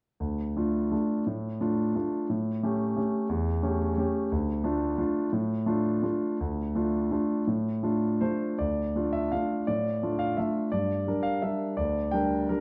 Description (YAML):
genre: classical, piano waltz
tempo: 146-188 BPM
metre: 3/4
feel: rubato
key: D minor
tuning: A4 = 440 Hz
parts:
  - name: clear concert grand piano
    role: solo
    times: 0.2-12.6 s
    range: D2 to G5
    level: -28 LUFS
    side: equal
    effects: none
room: wet recital hall reverb, RT60 1.6 s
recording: dark, warm production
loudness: -28 LUFS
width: mono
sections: 0.2-8.6 A section; 8.6-12.6 B section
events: none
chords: 0.2 Dm; 2.3 A7; 4.3 Dm; 10.7 Gm